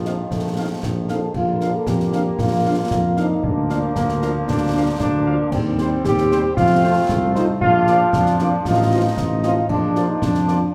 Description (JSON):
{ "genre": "military-style march for wind band", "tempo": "115 BPM", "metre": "2/4", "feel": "straight", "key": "Bb major", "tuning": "A4 = 441 Hz", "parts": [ { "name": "clear euphonium", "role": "second line", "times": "0.0-10.7 s", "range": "F3 to A4", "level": "-23 LUFS", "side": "equal", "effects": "none" }, { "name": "clear trombone section", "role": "sustained chords", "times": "0.0-10.7 s", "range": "D3 to Eb4", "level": "-29 LUFS", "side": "equal", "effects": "none" }, { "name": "mellow tuba", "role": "bass", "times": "0.0-10.7 s", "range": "A1 to F2", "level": "-24 LUFS", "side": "equal", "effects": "none" }, { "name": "mellow trumpet section", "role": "melody", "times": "0.1-10.6 s", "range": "C5 to F5", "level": "-38 LUFS", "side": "equal", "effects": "none" }, { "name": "dark French horn section", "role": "accompaniment", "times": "0.1-10.6 s", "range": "F3 to G4", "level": "-31 LUFS", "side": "equal", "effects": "none" }, { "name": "concert snare drum, concert bass drum and clash cymbals", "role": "drums", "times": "0.1-10.6 s", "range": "none", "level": "-28 LUFS", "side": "equal", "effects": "none" } ], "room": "wet recital hall reverb, RT60 1.4 s", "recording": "recorded in a church or concert hall", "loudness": "-19 LUFS", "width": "mono", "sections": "0.0-10.7 A section", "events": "none", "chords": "0.0 F7/Bb; 1.4 Bb; 3.4 Bb/D; 5.5 Cm/Eb; 6.6 F; 7.6 Bb; 8.7 F7/A; 9.7 Bb" }